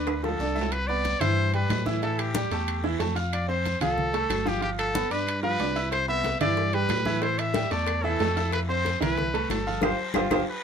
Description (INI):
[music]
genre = latin, salsa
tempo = 185 BPM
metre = 4/4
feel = straight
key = C major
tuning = A4 = 443 Hz
[part]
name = bright trumpet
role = melody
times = 0.0-10.6 s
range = F4 to E5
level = -28 LUFS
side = left 1 dB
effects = none
[part]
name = bright baby grand piano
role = accompaniment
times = 0.0-10.4 s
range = E3 to F6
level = -29 LUFS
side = right 3 dB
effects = none
[part]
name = smooth gliding synth bass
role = bass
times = 0.0-10.4 s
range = G1 to A2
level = -30 LUFS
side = left 1 dB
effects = none
[part]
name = bongos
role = percussion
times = 0.1-0.6, 5.9-10.4 s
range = none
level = -35 LUFS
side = left 6 dB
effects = none
[part]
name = claves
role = percussion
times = 0.1-10.4 s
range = none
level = -40 LUFS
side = left 7 dB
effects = none
[part]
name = congas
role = percussion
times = 0.1-10.4 s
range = none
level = -34 LUFS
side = left 3 dB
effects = none
[part]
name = guiro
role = percussion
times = 0.1-10.4 s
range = none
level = -41 LUFS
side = left 2 dB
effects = none
[part]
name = timbales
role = percussion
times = 0.1-10.4 s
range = none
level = -34 LUFS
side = right 6 dB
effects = none
[sound]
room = moderate small room reverb, RT60 0.5 s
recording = minimal, uncompressed stereo recording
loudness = -24 LUFS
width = side -7 dB against mid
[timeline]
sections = 0.7-10.6 A section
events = drum fill 0.0-0.7, 9.8-10.6; band accent 9.8-10.6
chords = 0.0 G7 (rootless); 0.7 Cmaj7; 2.0 A5; 3.3 F; 4.6 G7; 5.9 Cmaj7; 7.2 A5; 8.5 Fmaj7; 9.8 G7sus4